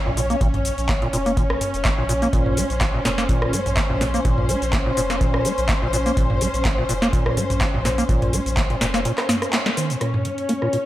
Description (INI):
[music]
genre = acid house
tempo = 125 BPM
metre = 4/4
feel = swing 54% on 16ths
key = Bb minor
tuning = A4 = 440 Hz
[part]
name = rich studio string section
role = sustained chords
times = 0.0-10.9 s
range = Db4 to Db5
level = -25 LUFS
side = left 1 dB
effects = sidechain pumping, low-pass filter
[part]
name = acid bass, square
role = riff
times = 0.1-10.8 s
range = Bb2 to Bb3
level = -25 LUFS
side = equal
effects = tube saturation, wide subtle chorus, sidechain pumping, dub echo
[part]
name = warm sub bass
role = bass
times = 0.1-9.1 s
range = F1 to Bb1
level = -27 LUFS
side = equal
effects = sidechain pumping
[part]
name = booming analog drum machine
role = drums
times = 0.1-10.8 s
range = cabasa, handclaps, hi-hat, rim click, snare drum, toms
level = -25 LUFS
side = equal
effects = none
[part]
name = electronic kick drum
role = drums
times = 0.4-8.7 s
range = none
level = -22 LUFS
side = equal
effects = none
[sound]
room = light reverb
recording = none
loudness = -18 LUFS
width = side -14 dB against mid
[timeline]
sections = 0.0-10.0 A section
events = band accent 9.5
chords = 0.0 Bbm